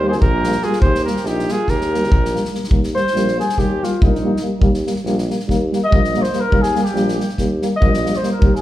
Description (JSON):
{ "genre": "balkan folk, Balkan brass band", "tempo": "284 BPM (eighths)", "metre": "9/8", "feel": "straight", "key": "Eb major", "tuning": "A4 = 443 Hz", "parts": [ { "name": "warm flugelhorn", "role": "melody", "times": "0.0-2.5 s", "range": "G4 to C5", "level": "-21 LUFS", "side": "right 2 dB", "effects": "none" }, { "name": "mellow flugelhorn", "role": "second line", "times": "0.0-8.6 s", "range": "Eb4 to Eb5", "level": "-22 LUFS", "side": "left 1 dB", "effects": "none" }, { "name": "dark euphonium", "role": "accompaniment", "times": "0.0-8.5 s", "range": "G3", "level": "-22 LUFS", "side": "right 2 dB", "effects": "none" }, { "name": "warm euphonium", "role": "accompaniment", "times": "0.0-8.5 s", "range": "Bb3", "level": "-26 LUFS", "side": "left 4 dB", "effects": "none" }, { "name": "clear tuba", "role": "bass", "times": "0.0-8.6 s", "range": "Bb1 to Eb2", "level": "-23 LUFS", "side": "equal", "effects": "none" }, { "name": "unplugged drum kit", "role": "percussion", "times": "0.1-8.6 s", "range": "kick drum, snare drum", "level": "-19 LUFS", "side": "equal", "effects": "none" } ], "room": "moderate recital hall reverb, RT60 1.4 s", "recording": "recorded in a church or concert hall", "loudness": "-15 LUFS", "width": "side -14 dB against mid", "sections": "0.0-2.7 A section; 2.7-8.6 B section", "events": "flugelhorn solo 2.7-8.6", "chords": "0.0 Eb" }